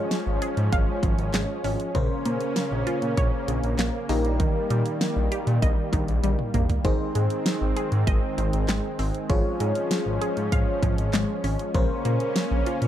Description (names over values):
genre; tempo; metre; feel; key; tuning
synth-pop; 98 BPM; 4/4; straight; unclear; A4 = 442 Hz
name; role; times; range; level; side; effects
FM electric piano; accompaniment; 0.0-12.9 s; Db4 to Db5; -30 LUFS; left 2 dB; chorus
lush unison pad; sustained chords; 0.0-12.9 s; Db3 to Db4; -30 LUFS; right 1 dB; chorus
pop drum kit; drums; 0.1-12.9 s; handclaps, hi-hat, kick drum, snare drum, toms; -26 LUFS; equal; none
smooth synth bass; bass; 0.3-12.9 s; Ab1 to Bb2; -26 LUFS; equal; none
wide unison pluck; arpeggios; 0.4-12.8 s; Db3 to F5; -32 LUFS; right 1 dB; phaser, tape echo
room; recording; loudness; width
light reverb; dark, warm production; -22 LUFS; side -11 dB against mid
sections
0.0-12.9 A section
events
drum fill 6.2-6.8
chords
0.0 Db/Ab; 1.9 Bbmadd9; 4.1 Eb/Bb; 6.8 Ab; 9.3 Db/Ab; 11.7 Bbmadd9